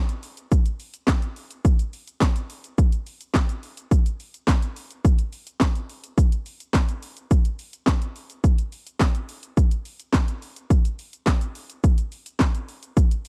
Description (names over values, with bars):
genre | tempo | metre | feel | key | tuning
pop | 106 BPM | 4/4 | straight | none | none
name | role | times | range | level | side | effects
house drum kit | drums | 0.1-13.3 s | handclaps, hi-hat, kick drum, shaker, snare drum | -22 LUFS | equal | overdrive
room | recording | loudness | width
little or no reverb | dry, close 1970s-style studio recording | -24 LUFS | mono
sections
0.0-13.3 A section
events
none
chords
none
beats
0.52 1.08 | 1.65 2.21 2.78 3.35 | 3.91 4.48 5.04 5.61 | 6.17 6.74 7.31 7.87 | 8.44 9.01 9.57 10.14 | 10.70 11.27 11.84 12.40 | 12.97